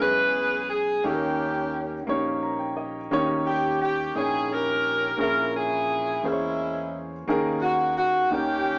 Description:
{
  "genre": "slow gospel",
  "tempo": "58 BPM (dotted quarters)",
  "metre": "6/8",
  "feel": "straight",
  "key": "unclear",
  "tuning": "A4 = 440 Hz",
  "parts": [
    { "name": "warm saxophone section", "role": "melody", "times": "0.0-8.8 s", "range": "G#3 to B4", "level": "-23 LUFS", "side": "equal", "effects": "none" },
    { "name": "warm upright piano", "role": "accompaniment", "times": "0.0-8.8 s", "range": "A#2 to A#5", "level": "-27 LUFS", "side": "equal", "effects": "none" },
    { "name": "fingered electric bass with an envelope filter", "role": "bass", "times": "0.0-8.8 s", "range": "A#1 to E2", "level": "-38 LUFS", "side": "equal", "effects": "none" }
  ],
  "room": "moderate studio reverb, RT60 0.5 s",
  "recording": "band playing live in one room, small speaker sound",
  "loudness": "-22 LUFS",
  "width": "side -40 dB against mid",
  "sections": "0.0-8.8 A section",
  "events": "upright piano fill 2.1-3.1",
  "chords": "0.0 E6; 1.0 D#7; 5.2 A#m7b5; 7.3 D#7sus4"
}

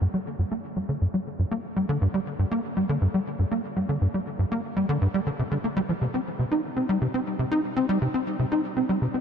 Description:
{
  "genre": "ambient",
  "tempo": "120 BPM",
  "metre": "4/4",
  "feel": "straight",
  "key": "G minor",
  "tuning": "A4 = 440 Hz",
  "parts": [
    { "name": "tight sequencer bass", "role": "solo", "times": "0.0-9.2 s", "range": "G2 to Eb4", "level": "-24 LUFS", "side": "equal", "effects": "ensemble chorus, ping-pong delay" }
  ],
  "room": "moderate huge ambient reverb, RT60 8.2 s",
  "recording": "dreamy mix soaked in reverb",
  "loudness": "-24 LUFS",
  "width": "side -7 dB against mid",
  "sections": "0.0-9.2 A section",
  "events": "none",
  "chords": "none"
}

